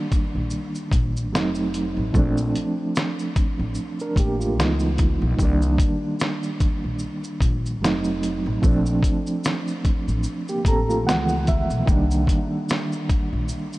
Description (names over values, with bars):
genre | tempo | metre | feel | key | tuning
lo-fi hip hop | 74 BPM | 4/4 | swing 56% on 16ths | C dorian | A4 = 442 Hz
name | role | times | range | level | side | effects
reed electric piano | accompaniment | 0.0-13.8 s | Eb3 to Bb5 | -24 LUFS | right 2 dB | fast tremolo, cassette tape, low-pass filter
lo-fi sampler-style drum kit | drums | 0.1-13.8 s | hi-hat, kick drum, shaker, snare drum | -23 LUFS | equal | none
upright bass | bass | 0.3-13.5 s | F1 to Db2 | -25 LUFS | equal | none
room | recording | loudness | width
light reverb, digital ambience | cassette tape | -20 LUFS | side -19 dB against mid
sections
0.0-13.8 A section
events
none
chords
0.0 Cm7 (rootless); 1.3 F7b9; 2.1 Bbmaj9; 4.6 Dbm7; 5.4 Cm7; 7.8 F7b9; 8.6 Bbmaj9; 11.1 Dbm7; 11.9 Cm7